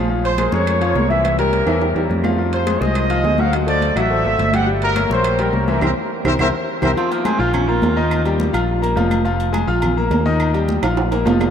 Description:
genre	latin, salsa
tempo	209 BPM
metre	4/4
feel	straight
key	F minor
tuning	A4 = 442 Hz
part	bright grand piano	accompaniment	0.0-11.5 s	Eb3 to F6	-20 LUFS	left 3 dB	none
part	picked electric bass	bass	0.0-11.5 s	F1 to F2	-20 LUFS	equal	none
part	congas	percussion	0.1-11.5 s	none	-25 LUFS	right 1 dB	none
part	mellow trumpet section	melody	0.2-6.9 s	Bb4 to F#5	-21 LUFS	equal	none
part	timbales and agogo bells	percussion	0.3-11.5 s	none	-26 LUFS	right 6 dB	none
part	claves	percussion	0.4-11.5 s	none	-35 LUFS	right 6 dB	none
part	warm baritone saxophone	second line	7.0-8.3 s	Bb3 to F4	-26 LUFS	right 3 dB	none
room	wet cathedral reverb, RT60 6.0 s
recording	in a vast, echoing space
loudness	-15 LUFS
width	side -8 dB against mid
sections	0.0-7.0 A section; 7.0-11.5 B section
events	drum fill 1.7-2.4, 6.1-7.0, 10.8-11.5; band accent 5.8-7.0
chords	0.1 Bbm7; 1.2 C7; 2.4 Fm7; 3.5 D7; 4.7 Gdim; 5.8 C7; 7.0 Fm; 7.5 Bb5; 8.1 Eb; 8.7 Bb5; 9.3 Fm; 9.8 Bb5; 10.4 Eb; 11.0 Bb5

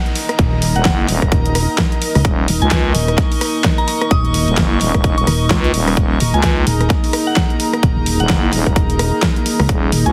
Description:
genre	bass house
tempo	129 BPM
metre	4/4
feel	swing 59% on 16ths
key	unclear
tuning	A4 = 444 Hz
part	dark analog pad	sustained chords	0.1-10.1 s	Bb3 to Bb4	-26 LUFS	equal	chorus, sidechain pumping
part	downlifter	sound effects	0.0-2.2 s	none	-38 LUFS	equal	none
part	warm chamber string section	texture	0.0-10.1 s	Eb4 to Db6	-27 LUFS	equal	sidechain pumping
part	big-room dance drum kit	drums	0.1-10.1 s	hi-hat, rim click, snare drum	-23 LUFS	equal	overdrive, studio reverb
part	pulsing pluck wobble bass	bass	0.4-10.0 s	Eb1 to Db2	-18 LUFS	equal	chorus, tube saturation, sidechain pumping
part	electronic kick drum	drums	0.4-9.8 s	none	-19 LUFS	equal	overdrive, studio reverb
part	soft synth bell	melody	0.8-10.1 s	Gb5 to Eb6	-28 LUFS	equal	chorus, phaser, dub echo
part	growling FM bass	bass	0.8-10.1 s	Eb1 to Db2	-19 LUFS	equal	sidechain pumping
room	little or no reverb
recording	heavily compressed radio sound, multiband compression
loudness	-15 LUFS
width	mono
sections	0.0-10.1 A section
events	none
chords	0.0 Eb5

